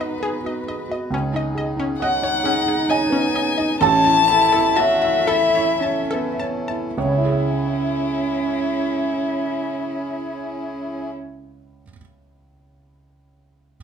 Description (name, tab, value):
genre	neoclassical piano and strings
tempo	52-68 BPM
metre	3/4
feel	rubato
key	C# minor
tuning	A4 = 442 Hz
part	dark violin	melody	0.0-11.1 s	E4 to A5	-21 LUFS	left 6 dB	none
part	dark cello	second line	0.0-11.1 s	C#4 to F#4	-25 LUFS	right 5 dB	none
part	felt-muted upright piano	accompaniment	0.0-13.8 s	A1 to A5	-23 LUFS	right 4 dB	none
part	pedal harmonium	sustained chords	0.0-11.1 s	B3 to B4	-31 LUFS	left 1 dB	none
part	wide unison pluck	arpeggios	0.0-6.8 s	C#4 to A5	-28 LUFS	left 2 dB	none
room	moderate large studio reverb, RT60 0.8 s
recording	minimal, uncompressed stereo recording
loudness	-18 LUFS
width	side -7 dB against mid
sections	0.0-1.1 A section; 1.1-7.0 B section; 7.0-10.3 C section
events	slowing down 0.0-7.0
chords	0.0 G#m7; 1.1 C#sus2; 3.8 A; 7.0 C#m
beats	0.22 | 1.12 2.01 2.90 | 3.81 4.78 5.82 | 6.96 8.08 9.21